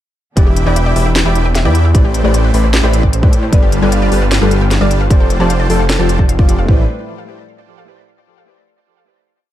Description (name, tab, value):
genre	future bass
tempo	152 BPM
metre	4/4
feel	half-time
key	A minor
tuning	A4 = 440 Hz
part	soft round pluck	accompaniment	0.4-6.8 s	E3 to D5	-20 LUFS	left 2 dB	chorus, sidechain pumping, ping-pong delay
part	muted studio string section	sustained chords	0.4-6.9 s	A2 to B4	-27 LUFS	equal	none
part	wide unison pluck	arpeggios	0.4-6.9 s	G4 to A5	-26 LUFS	left 2 dB	sidechain pumping, ping-pong delay
part	dense compressed supersaw	riff	0.4-6.8 s	G3 to D6	-20 LUFS	equal	sidechain pumping, ping-pong delay
part	wide detuned saw bass	bass	0.4-6.9 s	E1 to A2	-13 LUFS	equal	chorus, sidechain pumping
part	electronic kick drum	drums	0.4-6.8 s	none	-11 LUFS	equal	none
part	trap drum kit	drums	0.4-6.6 s	hi-hat, snare drum	-18 LUFS	equal	none
part	warm velvety synth lead	melody	3.5-6.8 s	E4 to D5	-21 LUFS	equal	chorus, sidechain pumping, digital delay
room	light reverb, digital ambience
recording	dark, warm production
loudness	-10 LUFS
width	side -12 dB against mid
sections	0.4-6.7 drop; 6.7-8.3 final chord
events	drop 0.4-6.7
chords	0.4 Em7; 1.9 Am11; 3.5 G7; 5.1 F6; 6.7 Am11